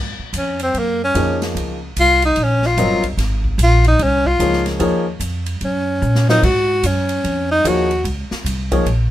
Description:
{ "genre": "modal jazz", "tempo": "148 BPM", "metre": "4/4", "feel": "swing 64% on 8ths", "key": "Ab mixolydian", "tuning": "A4 = 440 Hz", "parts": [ { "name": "upright bass", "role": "bass", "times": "0.0-9.1 s", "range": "G1 to Bb2", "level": "-19 LUFS", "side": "equal", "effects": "none" }, { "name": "swinging big-band drum kit", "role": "drums", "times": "0.3-9.0 s", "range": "crash cymbal, hi-hat, kick drum, ride cymbal, snare drum", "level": "-27 LUFS", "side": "equal", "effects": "none" }, { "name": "warm tenor saxophone", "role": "melody", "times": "0.4-8.1 s", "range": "Bb3 to Gb4", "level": "-16 LUFS", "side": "equal", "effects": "none" }, { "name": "warm baby grand piano", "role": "accompaniment", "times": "1.1-8.8 s", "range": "F3 to Eb5", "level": "-20 LUFS", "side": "left 2 dB", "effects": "none" } ], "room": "light reverb", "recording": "minimal, uncompressed stereo recording", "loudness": "-15 LUFS", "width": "side -13 dB against mid", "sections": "0.0-9.1 A section", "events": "tenor saxophone solo 0.0-9.1; drum fill 6.0-6.4", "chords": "0.0 Ab13sus4" }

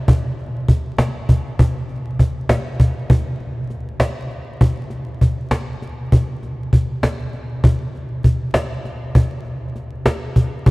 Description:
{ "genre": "progressive instrumental, progressive", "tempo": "198 BPM (eighths)", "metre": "5/8", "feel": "straight", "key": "none", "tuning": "none", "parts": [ { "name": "cajon", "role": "drums", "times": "0.1-10.7 s", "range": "none", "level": "-17 LUFS", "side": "equal", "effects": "none" } ], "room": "wet cathedral reverb, RT60 5.4 s", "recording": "in a vast, echoing space, vinyl crackle", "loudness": "-17 LUFS", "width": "side -23 dB against mid", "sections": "0.0-4.6 A section; 4.6-10.7 B section", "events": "none", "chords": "none" }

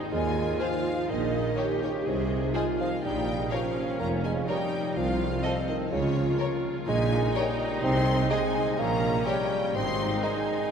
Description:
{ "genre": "cinematic, playful, whimsical film cue", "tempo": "125 BPM", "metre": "4/4", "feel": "straight", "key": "Ab major", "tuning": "A4 = 440 Hz", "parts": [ { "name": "rich studio viola section", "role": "accompaniment", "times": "0.0-10.7 s", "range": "C4 to Ab4", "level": "-33 LUFS", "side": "right 1 dB", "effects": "none" }, { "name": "concert harp", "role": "arpeggios", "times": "0.0-10.7 s", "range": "Ab2 to Eb5", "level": "-35 LUFS", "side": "left 6 dB", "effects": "none" }, { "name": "rich studio violin section", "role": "melody", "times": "0.1-10.7 s", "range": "C5 to C6", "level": "-36 LUFS", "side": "left 3 dB", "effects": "none" }, { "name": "dark bassoon", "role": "accompaniment", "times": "0.1-10.7 s", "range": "C3 to C4", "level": "-30 LUFS", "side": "right 1 dB", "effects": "none" }, { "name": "dark tuba", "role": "bass", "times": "0.1-10.2 s", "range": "F1 to Eb2", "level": "-35 LUFS", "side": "right 3 dB", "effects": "none" }, { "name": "rich studio cello section", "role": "bass", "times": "0.1-10.1 s", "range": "C2 to C3", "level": "-34 LUFS", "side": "right 2 dB", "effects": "none" }, { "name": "rich studio double bass section", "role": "bass", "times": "0.1-10.1 s", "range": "F1 to Eb2", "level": "-34 LUFS", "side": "right 3 dB", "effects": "none" }, { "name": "rich studio violin section", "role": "second line", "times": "0.6-10.3 s", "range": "Eb4 to Eb5", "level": "-38 LUFS", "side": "left 3 dB", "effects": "none" } ], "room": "wet cathedral reverb, RT60 5.0 s", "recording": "minimal, uncompressed stereo recording", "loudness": "-25 LUFS", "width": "side -7 dB against mid", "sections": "0.0-10.7 A section", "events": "none", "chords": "0.0 Ab; 1.1 Eb7/Bb; 2.1 Ab/C; 3.0 Bbm; 5.0 F7/C; 5.9 Bbm/Db; 6.9 Gdim/Bb; 7.8 Ab/C; 8.8 Gdim/Bb; 9.8 Ab" }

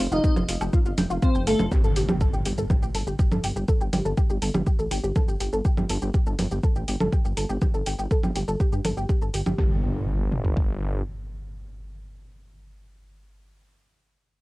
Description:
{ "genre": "melodic techno", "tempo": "122 BPM", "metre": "4/4", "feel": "straight", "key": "unclear", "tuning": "A4 = 438 Hz", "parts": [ { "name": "woody wave-folded pluck", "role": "arpeggios", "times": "0.0-9.8 s", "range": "F4 to G6", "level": "-31 LUFS", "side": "equal", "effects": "ensemble chorus, sidechain pumping, cassette tape, analog delay" }, { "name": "swelling detuned saw bass", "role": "bass", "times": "0.0-11.0 s", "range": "F1 to G2", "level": "-28 LUFS", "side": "equal", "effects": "sidechain pumping" }, { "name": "electronic hi-hat, shaker, congas and woodblock", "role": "drums", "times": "0.0-9.6 s", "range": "none", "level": "-28 LUFS", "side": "right 1 dB", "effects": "sidechain pumping on hats, studio reverb, cassette tape, sidechain pumping on perc" }, { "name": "soft octave-layered synth lead", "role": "melody", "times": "0.1-1.6 s", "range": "A3 to Eb4", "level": "-29 LUFS", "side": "left 2 dB", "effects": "chorus, phaser, sidechain pumping, analog delay" }, { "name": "airy dreamy lead", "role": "second line", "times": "0.1-1.6 s", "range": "A4 to Eb5", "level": "-30 LUFS", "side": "right 1 dB", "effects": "chorus, sidechain pumping, cassette tape, analog delay" }, { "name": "deep house drum kit", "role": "drums", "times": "0.2-10.7 s", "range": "kick drum, toms", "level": "-22 LUFS", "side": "equal", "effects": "studio reverb, cassette tape" }, { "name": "impact", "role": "sound effects", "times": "1.7-3.7, 9.6-13.4 s", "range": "none", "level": "-30 LUFS", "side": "equal", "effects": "none" } ], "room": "light reverb", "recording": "home recording on cassette", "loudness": "-22 LUFS", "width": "side -20 dB against mid", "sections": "0.0-1.7 A section; 1.7-9.6 B section; 9.6-13.5 C section", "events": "drop 0.0-1.7; impact 1.7-3.7", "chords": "0.0 Fsus2; 1.7 Gsus2; 9.6 N.C." }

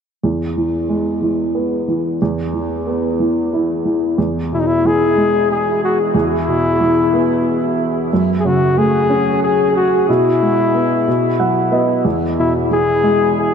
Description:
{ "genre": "pop", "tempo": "61 BPM (dotted quarters)", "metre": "6/8", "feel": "straight", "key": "E major", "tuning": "A4 = 439 Hz", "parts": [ { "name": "warm upright piano", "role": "accompaniment", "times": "0.2-13.5 s", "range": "E2 to F#5", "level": "-16 LUFS", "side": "right 1 dB", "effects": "none" }, { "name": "warm flugelhorn", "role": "melody", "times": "4.5-13.5 s", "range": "D#4 to G#4", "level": "-15 LUFS", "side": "left 2 dB", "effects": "ping-pong delay" } ], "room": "wet huge ambient reverb, RT60 8.5 s", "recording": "dreamy mix soaked in reverb, nothing above 10.6 kHz", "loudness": "-14 LUFS", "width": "side -7 dB against mid", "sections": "0.2-4.2 A section; 4.2-13.5 B section", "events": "upright piano fill 11.1-12.1", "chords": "0.2 E; 2.2 E5; 4.2 E; 6.1 E5; 8.1 F#madd9; 10.1 E/B; 11.1 B5; 12.1 E" }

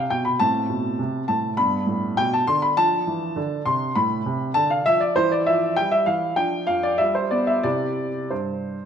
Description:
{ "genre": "classical-period piano sonatina", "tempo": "100 BPM", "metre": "4/4", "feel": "rubato", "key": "unclear", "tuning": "A4 = 441 Hz", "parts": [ { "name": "warm baby grand piano", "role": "solo", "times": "0.0-8.9 s", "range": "F2 to C6", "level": "-20 LUFS", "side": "equal", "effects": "none" } ], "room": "wet recital hall reverb, RT60 1.6 s", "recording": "none", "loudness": "-19 LUFS", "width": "side -8 dB against mid", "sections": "0.0-8.9 A section", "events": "none", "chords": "0.4 Am; 1.6 Gadd9; 2.8 Dm; 5.2 Dm11/E; 6.4 Dm/F; 7.0 G7; 7.6 C" }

